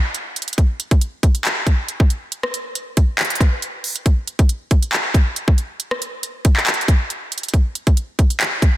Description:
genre	hip hop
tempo	138 BPM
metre	4/4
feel	half-time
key	none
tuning	none
part	trap drum kit	drums	0.1-8.7 s	handclaps, hi-hat, kick drum, rim click	-16 LUFS	equal	none
room	light reverb, digital ambience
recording	dense, heavily limited modern master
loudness	-16 LUFS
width	side -15 dB against mid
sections	0.0-8.8 A section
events	none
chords	none

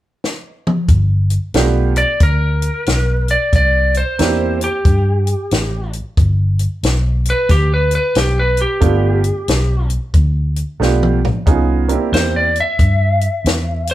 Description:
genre	electric blues shuffle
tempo	91 BPM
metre	4/4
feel	swing 63% on 8ths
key	G mixolydian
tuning	A4 = 441 Hz
part	compact cocktail drum kit	drums	0.2-13.9 s	hi-hat, kick drum, snare drum, toms	-16 LUFS	left 1 dB	none
part	vintage muted fingered electric bass	bass	0.9-13.9 s	G1 to G2	-16 LUFS	equal	none
part	bright upright piano	accompaniment	1.5-4.6, 8.8-12.5 s	A3 to Ab4	-18 LUFS	right 6 dB	none
part	lightly driven lead guitar	melody	2.0-13.9 s	G4 to E5	-18 LUFS	equal	none
room	moderate large studio reverb, RT60 0.9 s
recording	band playing live in one room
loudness	-13 LUFS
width	side -14 dB against mid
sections	0.9-13.9 A section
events	drum fill 0.2-0.9, 10.8-11.5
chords	0.0 N.C.; 0.9 G7; 3.5 C7; 6.2 G7; 11.5 C7

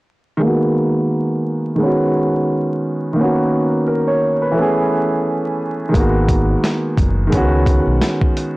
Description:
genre	hip hop, boom-bap hip-hop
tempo	87 BPM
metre	4/4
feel	swing 59% on 16ths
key	G# minor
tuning	A4 = 440 Hz
part	warm concert grand piano	accompaniment	0.4-8.6 s	D#3 to C#5	-16 LUFS	equal	cassette tape, high-pass filter, low-pass filter
part	deep dub fingered electric bass	bass	5.9-8.0 s	F#1 to C#2	-17 LUFS	equal	tube saturation
part	dusty soul sampler-style drum kit	drums	5.9-8.6 s	hi-hat, kick drum, snare drum	-17 LUFS	equal	none
room	light reverb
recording	blown-out, overdriven recording, vinyl crackle, overdrive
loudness	-14 LUFS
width	side -21 dB against mid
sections	0.4-8.6 A section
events	filter sweep on grand piano 0.4-8.6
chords	0.4 G#m7; 1.8 C#7sus4; 3.2 Bmaj7; 4.6 Amaj7; 5.9 G#m7; 7.3 C#7sus4

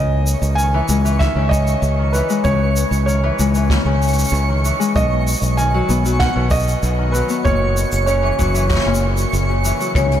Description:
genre	folktronica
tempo	96 BPM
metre	4/4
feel	straight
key	C# dorian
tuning	A4 = 438 Hz
part	felt-muted upright piano	melody	0.0-9.6 s	B4 to G#5	-22 LUFS	right 2 dB	vintage 12-bit sampler grit, analog delay
part	Celtic harp	arpeggios	0.0-10.2 s	A#2 to B3	-21 LUFS	left 5 dB	analog delay
part	modern bright fingered electric bass	bass	0.0-10.2 s	F#1 to C#2	-18 LUFS	equal	none
part	twinkling granular texture	texture	0.3-10.2 s	C#6	-28 LUFS	right 4 dB	built-in reverb
part	jazz brush drum kit	drums	0.3-10.2 s	hi-hat, shaker, snare drum, toms	-27 LUFS	left 1 dB	none
part	kick drum	drums	1.2-10.1 s	none	-21 LUFS	equal	none
part	marimba with hard mallets	second line	10.0-10.1 s	C#5	-19 LUFS	left 6 dB	none
part	warm analog pad	sustained chords	10.0-10.2 s	none	barely audible	none	none
room	moderate huge ambient reverb, RT60 9.5 s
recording	dreamy mix soaked in reverb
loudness	-14 LUFS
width	side -10 dB against mid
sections	0.0-10.2 A section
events	none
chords	0.0 C#madd9; 5.0 B; 7.5 F#7

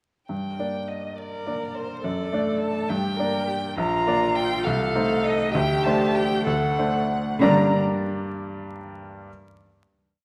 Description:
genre	quick classical-period movement for piano trio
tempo	62-70 BPM (dotted quarters)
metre	6/8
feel	rubato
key	G minor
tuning	A4 = 440 Hz
part	warm violin	melody	0.3-7.8 s	C5 to Bb5	-31 LUFS	equal	none
part	bright baby grand piano	accompaniment	0.3-9.3 s	Bb1 to D5	-27 LUFS	equal	none
part	warm cello	second line	1.2-7.8 s	D3 to Bb4	-29 LUFS	equal	none
room	wet recital hall reverb, RT60 1.5 s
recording	vinyl crackle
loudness	-24 LUFS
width	mono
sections	0.3-7.4 A section; 7.4-9.3 final chord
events	none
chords	0.3 Gm; 2.0 D/F#; 2.9 Gm; 3.8 Bb; 4.7 Adim/C; 5.5 D7sus4; 7.4 Gm

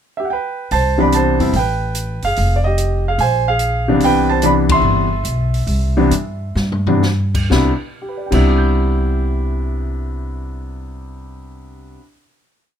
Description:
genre	jazz piano trio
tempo	123-146 BPM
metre	4/4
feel	swing 67% on 8ths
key	C major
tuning	A4 = 440 Hz
part	warm concert grand piano	melody	0.2-12.2 s	C3 to G6	-17 LUFS	equal	none
part	upright bass	bass	0.7-12.0 s	F1 to G2	-18 LUFS	equal	none
part	open jazz drum kit	drums	0.7-8.4 s	crash cymbal, hi-hat, kick drum, ride cymbal, snare drum, toms	-24 LUFS	left 2 dB	none
room	little or no reverb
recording	minimal, uncompressed stereo recording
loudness	-14 LUFS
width	side -9 dB against mid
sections	0.0-0.7 pickup bar; 0.7-7.5 A section; 7.5-11.4 final chord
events	slowing down 4.0-7.5; band accent 4.6; drum fill 6.6-7.0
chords	0.0 G; 0.7 Cmaj9; 1.5 Asus2; 2.4 Fm7; 3.2 Bb7sus2; 4.0 Cmaj9

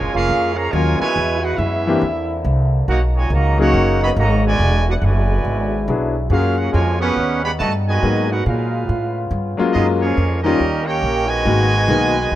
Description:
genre	jazz, big band swing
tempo	140 BPM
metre	4/4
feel	swing 65% on 8ths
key	F# major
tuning	A4 = 440 Hz
part	clear trumpet section	melody	0.0-12.4 s	A#3 to B5	-22 LUFS	right 1 dB	none
part	mellow trombone section	second line	0.0-12.4 s	A#2 to G4	-23 LUFS	right 4 dB	none
part	muted trombone section	sustained chords	0.0-12.4 s	A#2 to G#4	-27 LUFS	left 2 dB	none
part	upright bass	bass	0.0-12.4 s	E1 to A#2	-19 LUFS	equal	none
part	clear grand piano	accompaniment	0.7-12.1 s	D#3 to A#4	-20 LUFS	left 4 dB	none
room	light reverb, studio reverb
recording	rough home demo mix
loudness	-15 LUFS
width	side -13 dB against mid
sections	0.0-12.4 A section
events	none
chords	0.0 F#maj9; 1.2 C#m7; 2.0 C9; 2.9 Bmaj13; 4.6 E9; 6.3 F#maj9; 7.2 D#7alt; 8.0 G#m9; 8.9 C#7b13; 9.7 F#maj9; 10.6 D#7; 11.5 G#m7

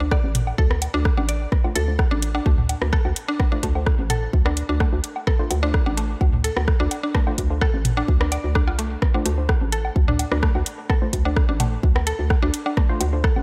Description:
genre	minimal techno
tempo	128 BPM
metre	4/4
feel	straight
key	D minor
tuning	A4 = 440 Hz
part	mallet-like synth pluck	riff	0.0-13.3 s	A3 to D5	-30 LUFS	equal	chorus, sidechain pumping, tape echo
part	wavetable chord stab	stabs	0.0-13.2 s	A3 to C5	-35 LUFS	equal	analog delay
part	hollow knocking FM bass	bass	0.0-13.4 s	A1 to D2	-26 LUFS	equal	sidechain pumping
part	electronic kick drum	drums	0.1-13.3 s	none	-22 LUFS	equal	none
part	house drum kit	drums	0.1-13.3 s	hi-hat, rim click	-31 LUFS	equal	none
part	booming analog drum machine	percussion	0.1-13.4 s	rim click, toms, woodblock	-31 LUFS	equal	overdrive, analog delay
room	light reverb, digital ambience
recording	none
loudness	-21 LUFS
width	mono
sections	0.0-13.4 A section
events	filter sweep on synth stab 0.0-13.4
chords	0.0 D7(no3)

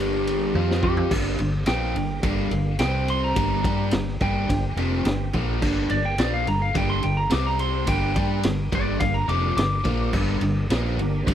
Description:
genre	blues rock power trio and southern rock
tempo	106 BPM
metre	4/4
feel	straight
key	G minor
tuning	A4 = 441 Hz
part	lightly driven lead guitar	melody	0.0-11.2 s	G4 to D6	-28 LUFS	equal	none
part	bright tonewheel organ	sustained chords	0.0-11.3 s	F3 to Eb5	-34 LUFS	right 5 dB	slow rotary speaker, overdrive, chorus vibrato
part	biting overdriven guitar	riff	0.0-11.3 s	F2 to G4	-26 LUFS	left 1 dB	spring reverb
part	vintage muted fingered electric bass	bass	0.0-11.3 s	F1 to G2	-26 LUFS	equal	none
part	raw garage drum kit	drums	0.3-11.3 s	crash cymbal, kick drum, ride cymbal, snare drum, toms	-28 LUFS	equal	none
room	small room ambience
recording	dry, close 1970s-style studio recording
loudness	-21 LUFS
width	side -10 dB against mid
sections	0.0-1.1 A section; 1.1-11.3 A section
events	lead electric guitar solo 0.0-11.3; drum fill 0.6-1.1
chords	0.0 Gm; 0.6 F5; 1.1 Gm; 2.8 C5; 3.4 Gm; 7.3 C5; 7.9 Gm

